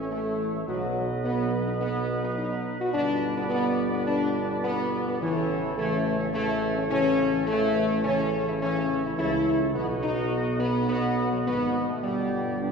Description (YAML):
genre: classical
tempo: 106 BPM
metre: 4/4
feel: straight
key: A lydian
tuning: A4 = 436 Hz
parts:
  - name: mellow trumpet section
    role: melody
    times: 0.0-12.7 s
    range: F#4 to E5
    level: -33 LUFS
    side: right 2 dB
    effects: none
  - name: warm French horn section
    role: sustained chords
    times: 0.0-12.7 s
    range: E3 to F#4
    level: -26 LUFS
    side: left 2 dB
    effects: none
  - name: warm trombone section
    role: sustained chords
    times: 0.0-12.7 s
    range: B2 to B3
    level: -32 LUFS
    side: right 1 dB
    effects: none
  - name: mellow tuba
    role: bass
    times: 0.0-12.7 s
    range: G1 to C#2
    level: -31 LUFS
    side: right 2 dB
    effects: none
room: wet concert hall reverb, RT60 2.1 s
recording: heard from further back in the room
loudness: -24 LUFS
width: side -5 dB against mid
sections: 0.0-12.7 A section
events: none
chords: 0.0 A; 0.7 B; 2.9 G; 5.2 A; 9.7 B; 12.0 G